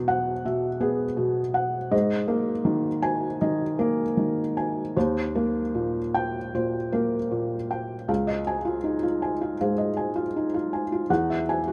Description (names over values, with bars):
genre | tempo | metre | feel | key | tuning
neoclassical minimalist piano | 79 BPM | 4/4 | uneven beats, rubato | Db major | A4 = 440 Hz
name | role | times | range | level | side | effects
felt-muted upright piano | solo | 0.0-11.7 s | Db2 to Ab5 | -26 LUFS | equal | none
room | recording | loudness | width
light reverb | none | -26 LUFS | mono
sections
0.0-8.1 A section; 8.1-11.7 B section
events
none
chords
0.0 Eadd9; 1.9 Absus2; 5.0 Eb6; 8.1 Dbadd9; 11.1 Eadd9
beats
0.47 1.19 | 1.93 2.66 3.40 4.17 | 4.95 5.74 6.53 7.31 | 8.09 8.84 9.59 10.34 | 11.09